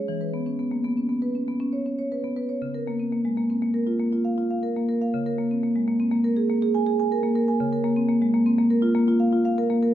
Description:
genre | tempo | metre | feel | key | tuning
classical, contemporary piece for solo marimba | 120 BPM | 5/4 | rubato | unclear | A4 = 439 Hz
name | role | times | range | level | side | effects
marimba with medium mallets | solo | 0.0-9.9 s | C#3 to G#5 | -21 LUFS | equal | none
room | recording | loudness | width
moderate recital hall reverb, RT60 1.7 s | minimal, uncompressed stereo recording | -21 LUFS | side -12 dB against mid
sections
0.0-9.9 A section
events
none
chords
0.1 C#m7/E; 2.6 C#6; 5.1 A#m7/C#; 7.6 Db6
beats
| 0.08 0.59 1.10 1.61 2.12 | 2.63 3.13 3.62 4.12 4.63 | 5.13 5.62 6.12 6.62 7.11 | 7.61 8.10 8.59 9.09 9.59

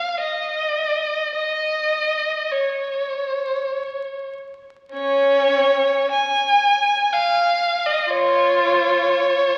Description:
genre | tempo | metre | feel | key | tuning
classical, free, expressive piece for unaccompanied violin | 41-63 BPM | 3/4 | rubato | Db major | A4 = 438 Hz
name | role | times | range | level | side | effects
rich violin | solo | 0.0-9.6 s | Db4 to Ab5 | -20 LUFS | equal | none
room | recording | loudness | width
wet concert hall reverb, RT60 2.1 s | very old 78 rpm record, vinyl crackle | -20 LUFS | mono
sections
0.0-4.9 A section; 4.9-9.6 B section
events
none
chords
none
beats
0.21 | 1.34 2.52 3.66 | 4.94 6.11 7.12 | 8.10 9.06

